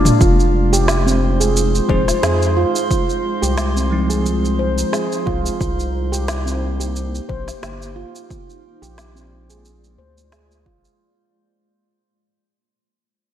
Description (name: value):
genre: organic downtempo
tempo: 89 BPM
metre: 4/4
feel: swing 55% on 16ths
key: F dorian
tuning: A4 = 441 Hz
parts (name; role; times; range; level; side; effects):
- granular cloud pad; sustained chords; 0.0-11.0 s; Ab3 to D5; -26 LUFS; left 2 dB; built-in reverb, vintage 12-bit sampler grit, sidechain pumping
- handpan; arpeggios; 0.0-10.8 s; C4 to C5; -21 LUFS; right 2 dB; digital delay
- round analog bass; bass; 0.0-10.9 s; Eb1 to F2; -20 LUFS; equal; tube saturation, sidechain pumping
- organic electronic drum kit; drums; 0.1-11.0 s; shaker, snare drum, toms; -23 LUFS; equal; none
- electronic kick drum; drums; 0.2-10.8 s; none; -19 LUFS; equal; none
- drifting glass-harmonics texture; texture; 1.1-11.0 s; C5; -31 LUFS; right 2 dB; chorus, built-in reverb
- bell-like tine electric piano; accompaniment; 1.9-5.6 s; F3 to Ab4; -24 LUFS; right 1 dB; fast stereo tremolo, sidechain pumping, digital delay, slapback echo
room: moderate concert hall reverb, RT60 2.2 s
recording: big arena sound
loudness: -15 LUFS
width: side -10 dB against mid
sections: 0.2-11.0 A section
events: fade-out 0.2-11.0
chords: 0.2 Fm7; 5.6 Cm7; 8.3 Bb7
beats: | 0.21 0.88 1.55 2.23 | 2.90 3.58 4.25 4.92 | 5.60 6.27 6.95 7.62 | 8.30 8.97 9.64 10.32